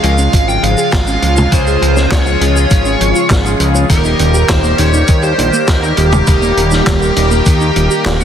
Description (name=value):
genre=synthwave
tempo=101 BPM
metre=4/4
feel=straight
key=unclear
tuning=A4 = 441 Hz
part: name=high-gain lead guitar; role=melody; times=0.0-8.2 s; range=G4 to G5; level=-17 LUFS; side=right 1 dB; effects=distortion, digital delay
part: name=phased analog pad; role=sustained chords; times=0.0-8.2 s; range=Db3 to G4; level=-18 LUFS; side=equal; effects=phaser, chorus, sidechain pumping
part: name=soft round pluck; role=arpeggios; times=0.0-8.2 s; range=Eb3 to Ab4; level=-20 LUFS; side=right 2 dB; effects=chorus, digital delay
part: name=chorused polysynth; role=stabs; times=0.0-8.2 s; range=Db3 to C5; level=-20 LUFS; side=left 3 dB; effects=digital delay
part: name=fat analog bass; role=bass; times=0.0-8.2 s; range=Eb1 to Eb2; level=-14 LUFS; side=equal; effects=sidechain pumping
part: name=vintage drum kit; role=drums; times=0.0-8.2 s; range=handclaps, hi-hat, shaker, snare drum, toms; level=-18 LUFS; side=equal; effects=none
part: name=electronic kick drum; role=drums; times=0.3-7.6 s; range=none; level=-12 LUFS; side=equal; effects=none
room=light reverb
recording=dense, heavily limited modern master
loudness=-9 LUFS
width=side -9 dB against mid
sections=0.0-8.2 A section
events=kick drops out 8.1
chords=0.0 Db; 3.9 Eb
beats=0.33 0.93 | 1.52 2.12 2.71 3.30 | 3.90 4.49 5.08 5.68 | 6.27 6.87 7.46 8.06